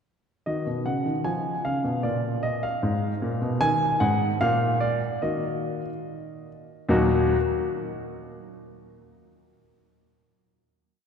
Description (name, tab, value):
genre	classical-period piano sonatina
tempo	75 BPM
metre	2/4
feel	straight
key	Eb minor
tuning	A4 = 441 Hz
part	clear grand piano	solo	0.5-7.4 s	Eb2 to Ab5	-23 LUFS	equal	none
room	wet church reverb, RT60 3.2 s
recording	dark, warm production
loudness	-23 LUFS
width	side -7 dB against mid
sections	0.5-6.9 A section; 6.9-8.5 final chord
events	none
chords	0.5 Ebm; 1.3 Db/F; 2.0 Bb5; 3.6 Ebm; 4.4 N.C.; 5.2 Ebm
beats	| 0.47 1.26 | 2.05 2.83 | 3.62 4.41 | 5.22 6.05 | 6.89